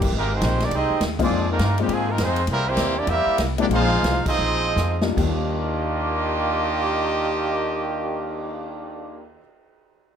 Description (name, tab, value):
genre	jazz, big band swing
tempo	143-204 BPM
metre	4/4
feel	swing 62% on 8ths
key	Eb major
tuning	A4 = 440 Hz
part	upright bass	bass	0.0-9.4 s	G1 to Ab2	-25 LUFS	equal	none
part	swinging big-band drum kit	drums	0.0-8.4 s	crash cymbal, cymbal swell, hi-hat, kick drum, ride cymbal, snare drum	-29 LUFS	equal	none
part	clear trombone section	second line	0.1-9.3 s	C3 to G4	-26 LUFS	right 1 dB	none
part	bright trumpet section	melody	0.2-9.3 s	G3 to F5	-25 LUFS	right 2 dB	none
part	warm baby grand piano	accompaniment	1.2-9.4 s	Eb2 to G4	-25 LUFS	left 9 dB	none
room	moderate large studio reverb, RT60 0.8 s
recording	none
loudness	-20 LUFS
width	side -8 dB against mid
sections	0.1-5.2 A section; 5.2-8.5 B section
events	band accent 1.2, 4.2; slowing down 2.5-5.2; drum fill 4.8-5.2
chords	0.1 Fm11 (rootless); 1.3 Bb9sus4; 2.5 C7; 3.7 Bb9sus4; 5.2 Ebmaj9